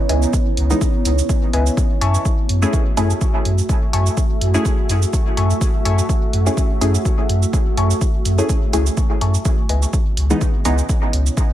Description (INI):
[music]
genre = dub techno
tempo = 125 BPM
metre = 4/4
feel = swing 55% on 16ths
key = unclear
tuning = A4 = 441 Hz
[part]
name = deep dark ambient pad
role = sustained chords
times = 0.0-11.5 s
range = A3 to E5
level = -25 LUFS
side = right 2 dB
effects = chorus, built-in reverb, sidechain pumping
[part]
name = warbly dusty pluck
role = riff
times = 0.1-9.9 s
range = B4 to C#6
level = -28 LUFS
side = left 4 dB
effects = chorus, cassette tape, sidechain pumping, dub echo
[part]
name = pure sine sub bass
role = bass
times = 0.1-11.3 s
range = C#2 to F#2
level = -17 LUFS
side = equal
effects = sidechain pumping
[part]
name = electronic hi-hat and cabasa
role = drums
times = 0.1-11.5 s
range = none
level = -27 LUFS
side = right 5 dB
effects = none
[part]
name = electronic kick drum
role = drums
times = 0.3-11.5 s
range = none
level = -19 LUFS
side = equal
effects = none
[part]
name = filtered dub chord stab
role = stabs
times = 0.7-10.8 s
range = E3 to G#4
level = -23 LUFS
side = left 1 dB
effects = chorus, phaser, sidechain pumping, dub echo
[sound]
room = little or no reverb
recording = none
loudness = -15 LUFS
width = side -13 dB against mid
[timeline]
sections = 0.0-11.5 A section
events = none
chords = 0.0 C#m7; 1.8 F#m7; 9.5 C#m7